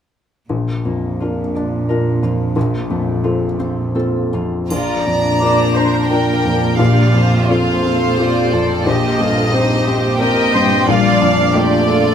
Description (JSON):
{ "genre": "cinematic, emotional film score for orchestra", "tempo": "88 BPM", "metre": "3/4", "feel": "rubato", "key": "Bb major", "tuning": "A4 = 440 Hz", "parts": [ { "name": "felt-muted upright piano", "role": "accompaniment", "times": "0.5-12.1 s", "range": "Bb1 to D5", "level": "-18 LUFS", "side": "left 1 dB", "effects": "none" }, { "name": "concert harp", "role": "arpeggios", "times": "0.5-12.1 s", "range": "Bb2 to D5", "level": "-22 LUFS", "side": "left 7 dB", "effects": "none" }, { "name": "dark studio cello section", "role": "bass", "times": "0.5-12.1 s", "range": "Bb2", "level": "-21 LUFS", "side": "right 3 dB", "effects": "none" }, { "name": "warm symphonic violin section", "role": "melody", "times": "4.7-12.1 s", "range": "C5 to Bb5", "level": "-21 LUFS", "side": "equal", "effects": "none" }, { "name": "warm chamber violin section", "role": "second line", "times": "4.7-12.1 s", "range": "D4 to F5", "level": "-20 LUFS", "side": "right 1 dB", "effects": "none" }, { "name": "triangle", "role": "percussion", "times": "4.7-6.1 s", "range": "none", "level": "-37 LUFS", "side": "equal", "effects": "none" }, { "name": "dark symphonic viola section", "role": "accompaniment", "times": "5.4-12.1 s", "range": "F4 to D5", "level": "-21 LUFS", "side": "equal", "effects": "none" } ], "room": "moderate recital hall reverb, RT60 1.7 s", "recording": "close, detailed microphones", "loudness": "-13 LUFS", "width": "side -8 dB against mid", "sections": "0.5-4.7 A section; 4.7-12.1 B section", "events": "none", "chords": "0.5 Bb; 2.6 F/Bb; 4.7 Bb; 6.8 F/Bb; 8.9 Cm/Bb; 10.9 Dm/Bb" }